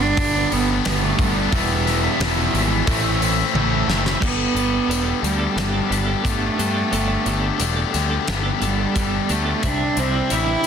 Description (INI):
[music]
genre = quiet-loud alternative rock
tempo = 89 BPM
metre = 4/4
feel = straight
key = unclear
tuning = A4 = 441 Hz
[part]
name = rich cello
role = melody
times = 0.0-10.7 s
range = G3 to E4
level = -23 LUFS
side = right 4 dB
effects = slapback echo
[part]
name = distorted electric guitar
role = riff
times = 0.0-4.2 s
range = E2 to A3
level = -27 LUFS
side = equal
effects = overdrive
[part]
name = fuzz guitar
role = riff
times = 0.0-4.2 s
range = G2 to E4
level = -26 LUFS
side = right 16 dB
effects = distortion
[part]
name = tight distorted guitar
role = riff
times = 0.0-10.7 s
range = G2 to G4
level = -24 LUFS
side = left 16 dB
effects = distortion
[part]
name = fuzz picked electric bass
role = bass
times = 0.0-10.5 s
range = E1 to G2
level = -24 LUFS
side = equal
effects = overdrive
[part]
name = big rock drum kit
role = drums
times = 0.2-10.7 s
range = crash cymbal, hi-hat, kick drum, snare drum, toms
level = -25 LUFS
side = left 1 dB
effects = none
[part]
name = twelve-string electric guitar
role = arpeggios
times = 4.2-10.7 s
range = C3 to A4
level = -28 LUFS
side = right 5 dB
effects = tremolo
[sound]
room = little or no reverb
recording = dense, heavily limited modern master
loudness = -18 LUFS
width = side -7 dB against mid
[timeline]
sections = 0.0-4.2 A section; 4.2-10.7 B section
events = drum fill 3.5-4.2; half time 4.2-10.7; cello solo 4.2-10.7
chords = 0.0 G; 1.5 Em; 2.9 Am; 4.2 Gadd9; 9.6 Cadd9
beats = 0.17 0.85 | 1.52 2.20 2.87 3.55 | 4.22 4.90 5.58 6.25 | 6.93 7.61 8.28 8.96 | 9.64 10.32